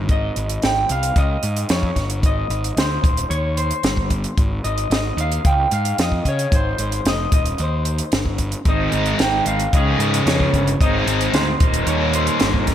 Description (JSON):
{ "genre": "indie rock", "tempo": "112 BPM", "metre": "4/4", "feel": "straight", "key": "unclear", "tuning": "A4 = 440 Hz", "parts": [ { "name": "raw garage guitar", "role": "riff", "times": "0.0-0.1, 8.7-12.7 s", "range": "Eb2 to Ab4", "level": "-19 LUFS", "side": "equal", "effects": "overdrive" }, { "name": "fuzz picked electric bass", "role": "bass", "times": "0.0-12.7 s", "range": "Eb1 to Db3", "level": "-22 LUFS", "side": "equal", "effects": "overdrive" }, { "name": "electric guitar through a small old amp", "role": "melody", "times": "0.1-12.7 s", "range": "C5 to G5", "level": "-24 LUFS", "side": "equal", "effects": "spring reverb, slapback echo" }, { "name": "compact cocktail drum kit", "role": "drums", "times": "0.1-12.7 s", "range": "hi-hat, kick drum, snare drum", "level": "-20 LUFS", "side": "equal", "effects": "none" } ], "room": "light reverb", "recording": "none", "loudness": "-17 LUFS", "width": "side -10 dB against mid", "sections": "0.1-12.7 A section", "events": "none", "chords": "0.1 Ab; 1.2 Dbsus2; 2.2 Ab5; 3.0 Eb; 4.4 Ab5; 5.5 Db5; 6.5 Fm7; 7.3 Eb; 8.7 Ab; 9.7 Dbsus2; 10.8 Ab; 11.6 Eb", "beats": "| 0.10 0.63 1.17 1.70 | 2.24 2.77 3.31 3.84 | 4.38 4.92 5.45 5.99 | 6.52 7.06 7.59 8.13 | 8.67 9.20 9.74 10.28 | 10.81 11.35 11.88 12.42" }